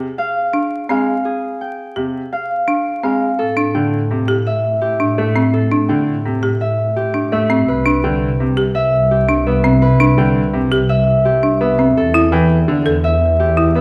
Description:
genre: classical, minimalist pattern music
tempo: 168 BPM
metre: 6/4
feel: straight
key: A minor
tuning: A4 = 439 Hz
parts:
  - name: Celtic harp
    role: melody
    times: 0.0-13.8 s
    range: G4 to G5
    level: -21 LUFS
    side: equal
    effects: none
  - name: bright grand piano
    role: accompaniment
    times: 0.0-13.8 s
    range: C3 to B3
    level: -22 LUFS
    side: equal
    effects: none
  - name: folk marimba with hard mallets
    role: arpeggios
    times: 0.0-13.8 s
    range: C4 to A4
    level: -21 LUFS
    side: equal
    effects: none
  - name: dark studio double bass section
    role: bass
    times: 3.4-13.8 s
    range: C2 to A2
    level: -20 LUFS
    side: equal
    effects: none
room: moderate recital hall reverb, RT60 1.4 s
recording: vinyl crackle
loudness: -16 LUFS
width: mono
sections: 0.0-3.4 A section; 3.4-13.8 B section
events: none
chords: 0.0 Fmadd9; 3.4 Am7; 7.7 Cmaj7; 12.0 Em7

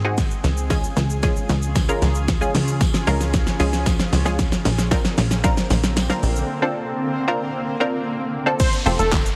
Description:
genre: dance-pop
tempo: 114 BPM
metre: 4/4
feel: straight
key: unclear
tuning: A4 = 441 Hz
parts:
  - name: punchy chord stab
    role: accompaniment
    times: 0.0-9.2 s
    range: Ab3 to C5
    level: -27 LUFS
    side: equal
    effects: chorus, sidechain pumping
  - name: granular cloud pad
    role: sustained chords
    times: 0.0-9.4 s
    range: Db3 to A4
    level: -30 LUFS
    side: equal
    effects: built-in reverb, sidechain pumping
  - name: plucky analog bass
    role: bass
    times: 0.0-9.3 s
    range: F1 to Db2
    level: -24 LUFS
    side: equal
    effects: sidechain pumping
  - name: pop drum kit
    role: drums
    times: 0.2-9.4 s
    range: crash cymbal, handclaps, hi-hat, kick drum, shaker, snare drum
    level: -23 LUFS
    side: equal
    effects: none
  - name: tambourine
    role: percussion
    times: 0.2-9.2 s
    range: none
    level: -42 LUFS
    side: equal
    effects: none
  - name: fat analog lead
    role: melody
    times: 8.6-9.1 s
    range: A4 to C5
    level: -25 LUFS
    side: equal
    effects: sidechain pumping
  - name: downlifter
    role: sound effects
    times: 8.6-9.4 s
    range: none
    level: -33 LUFS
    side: equal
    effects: none
room: light reverb, digital ambience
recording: heavily compressed radio sound, multiband compression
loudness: -21 LUFS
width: mono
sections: 0.0-8.6 A section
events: build-up 0.0-8.6; drum fill 0.0-6.5; break 6.5-8.6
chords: 0.2 Db; 4.4 Bbadd9; 8.6 Fadd9

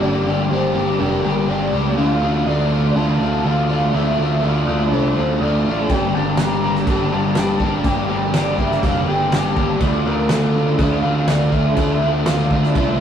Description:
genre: rock, shoegaze and dream pop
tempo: 122 BPM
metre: 4/4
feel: straight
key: unclear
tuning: A4 = 442 Hz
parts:
  - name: warm velvety synth lead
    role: melody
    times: 0.0-13.0 s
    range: A4 to Bb5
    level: -25 LUFS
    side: right 1 dB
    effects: chorus
  - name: crunchy overdriven guitar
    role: riff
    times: 0.0-13.0 s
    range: G2 to G4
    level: -18 LUFS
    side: left 1 dB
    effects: none
  - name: growling picked electric bass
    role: bass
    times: 0.0-13.0 s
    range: F1 to D2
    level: -22 LUFS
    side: right 1 dB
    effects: overdrive
  - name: loose indie drum kit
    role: drums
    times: 5.9-12.9 s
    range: crash cymbal, kick drum, snare drum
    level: -22 LUFS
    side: equal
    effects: none
room: wet stone room reverb, RT60 1.1 s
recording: rough rehearsal-room recording, faint mains hum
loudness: -16 LUFS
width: side -8 dB against mid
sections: 0.0-13.0 A section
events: none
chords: 0.0 Gm; 2.0 Dm; 5.9 Gm; 9.8 Dmadd9

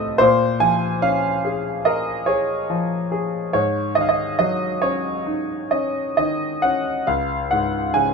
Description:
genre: classical, lyrical solo piano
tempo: 65-74 BPM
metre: 4/4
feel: rubato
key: unclear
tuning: A4 = 437 Hz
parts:
  - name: clear grand piano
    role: solo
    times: 0.0-8.1 s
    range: C2 to A5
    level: -18 LUFS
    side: equal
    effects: none
room: light reverb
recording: minimal, uncompressed stereo recording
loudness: -18 LUFS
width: side -4 dB against mid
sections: 0.0-8.1 A section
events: none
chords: 0.2 Bbm7; 3.5 Ab7sus4; 7.1 Db

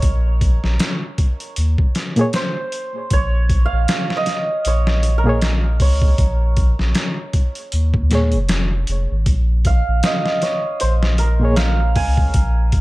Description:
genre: trip hop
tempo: 78 BPM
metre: 4/4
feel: swing 56% on 16ths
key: Bb minor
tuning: A4 = 439 Hz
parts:
  - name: santur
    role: melody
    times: 0.0-12.8 s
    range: Bb4 to Ab5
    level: -24 LUFS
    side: right 3 dB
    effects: dub echo
  - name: warm sub bass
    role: bass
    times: 0.0-12.8 s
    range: F1 to Eb2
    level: -17 LUFS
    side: equal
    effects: none
  - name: trip hop sampler-style drum kit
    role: drums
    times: 0.0-12.8 s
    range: hi-hat, kick drum, snare drum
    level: -19 LUFS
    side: equal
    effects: none
  - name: reed electric piano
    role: accompaniment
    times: 2.2-11.6 s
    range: Bb2 to Db5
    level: -20 LUFS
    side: equal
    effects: overdrive, fast tremolo, tape echo
room: digital ambience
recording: none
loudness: -15 LUFS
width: side -20 dB against mid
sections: 0.0-12.8 A section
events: none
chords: 0.0 Bbm

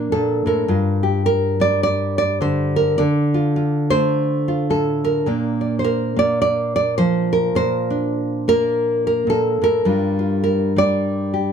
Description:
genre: folk, solo fingerstyle acoustic guitar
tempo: 105 BPM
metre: 4/4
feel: swing 60% on 8ths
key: G minor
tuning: A4 = 440 Hz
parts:
  - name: nylon-string guitar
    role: solo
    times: 0.0-11.5 s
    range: G2 to D5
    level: -16 LUFS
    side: equal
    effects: none
room: light reverb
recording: close, detailed microphones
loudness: -16 LUFS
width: side -7 dB against mid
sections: 0.0-11.5 A section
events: none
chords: 0.0 Bbmaj7; 0.7 Gm7; 3.0 Dm; 9.9 G5

